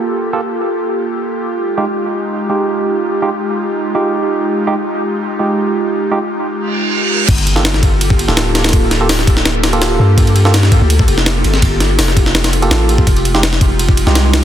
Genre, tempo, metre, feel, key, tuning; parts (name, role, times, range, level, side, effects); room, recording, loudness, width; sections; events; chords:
drum and bass, jungle; 166 BPM; 4/4; straight; A4 = 440 Hz
airy breathy pad; sustained chords; 0.0-14.4 s; Ab3 to A4; -18 LUFS; equal; chorus
barky tine electric piano; stabs; 0.0-14.4 s; Ab3 to A4; -18 LUFS; right 4 dB; overdrive, dub echo
reverse cymbal and impact; sound effects; 6.7-8.7 s; -18 LUFS; right 3 dB
long sustained 808-style bass; bass; 7.3-14.4 s; D1 to G2; -14 LUFS; left 1 dB
jungle sampler-style drum kit; drums; 7.3-14.4 s; crash cymbal, hi-hat, kick drum, ride cymbal, snare drum; -13 LUFS; equal
light reverb, digital ambience; dense, heavily limited modern master; -11 LUFS; side -10 dB against mid
0.0-7.3 A section; 7.3-14.4 B section
reverse cymbal 6.7-7.3; drop 7.3-14.4; impact 7.3-8.7
0.0 Gm9; 1.5 Fm9; 7.3 Gm9; 13.1 Fm9